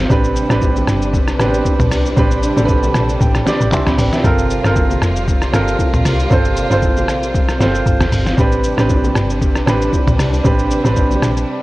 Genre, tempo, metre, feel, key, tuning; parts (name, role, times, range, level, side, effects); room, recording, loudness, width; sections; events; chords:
amapiano; 116 BPM; 4/4; swing 55% on 16ths; A4 = 439 Hz
clear concert grand piano; accompaniment; 0.0-11.6 s; B3 to C6; -18 LUFS; right 2 dB
warm studio string section; sustained chords; 0.0-11.6 s; C3 to B4; -23 LUFS; left 1 dB; sidechain pumping
woody log drum bass; bass; 0.0-11.4 s; F1 to C2; -18 LUFS; equal
lo-fi sampler-style drum kit; drums; 0.1-11.5 s; handclaps, hi-hat, kick drum, rim click, shaker, snare drum, toms; -17 LUFS; equal
congas and bongos; percussion; 0.1-11.4 s; -28 LUFS; left 3 dB
digital ambience; worn, warbling old tape, cassette tape, warbly pitch drift; -12 LUFS; side -18 dB against mid
0.0-11.6 A section
grand piano fill 2.7-4.2
0.1 Am11; 4.2 Gm11; 8.4 Am11